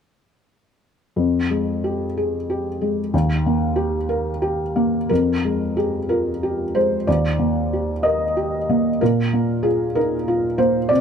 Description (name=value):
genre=neoclassical minimalist piano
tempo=62 BPM (dotted quarters)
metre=6/8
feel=rubato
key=F dorian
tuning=A4 = 440 Hz
part: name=felt-muted upright piano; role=solo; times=1.2-11.0 s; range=Eb2 to Eb5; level=-18 LUFS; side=equal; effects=none
room=little or no reverb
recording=close, detailed microphones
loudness=-18 LUFS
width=side -7 dB against mid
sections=1.2-5.1 A section; 5.1-11.0 B section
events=none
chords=1.2 Fmadd9; 3.1 Eb; 5.1 Fmadd9; 7.1 Eb; 9.0 Bbsus4